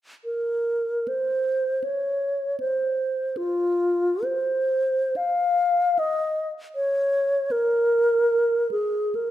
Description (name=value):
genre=classical, free, expressive piece for unaccompanied alto flute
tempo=free time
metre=none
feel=none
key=Bb minor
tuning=A4 = 441 Hz
part: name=mellow alto flute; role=solo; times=0.2-9.3 s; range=F4 to F5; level=-21 LUFS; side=equal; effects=none
room=moderate recital hall reverb, RT60 1.4 s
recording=minimal, uncompressed stereo recording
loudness=-21 LUFS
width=side -13 dB against mid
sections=0.2-9.3 A section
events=none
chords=none